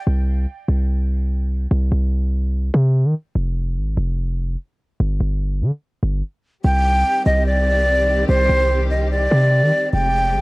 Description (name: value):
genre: hip hop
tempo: 146 BPM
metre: 4/4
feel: half-time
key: C minor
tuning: A4 = 440 Hz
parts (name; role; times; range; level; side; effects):
- breathy jazz flute; melody; 0.0, 6.6-10.4 s; C5 to G5; -18 LUFS; equal; none
- hard-hitting 808-style bass; bass; 0.1-10.4 s; F1 to Eb3; -18 LUFS; equal; none
- warm symphonic string section; sustained chords; 6.6-10.4 s; Eb3 to G4; -27 LUFS; equal; none
room: small room ambience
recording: worn, warbling old tape, cassette tape, warbly pitch drift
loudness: -17 LUFS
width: side -24 dB against mid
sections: 0.0-6.6 A section; 6.6-10.4 B section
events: break 0.1-6.6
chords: 0.1 N.C.; 5.0 G5; 6.6 Cm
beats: | 0.07 0.48 0.89 1.30 | 1.71 2.12 2.53 2.94 | 3.36 3.77 4.18 4.59 | 5.00 5.41 5.82 6.23 | 6.64 7.05 7.46 7.88 | 8.29 8.70 9.11 9.52 | 9.93 10.34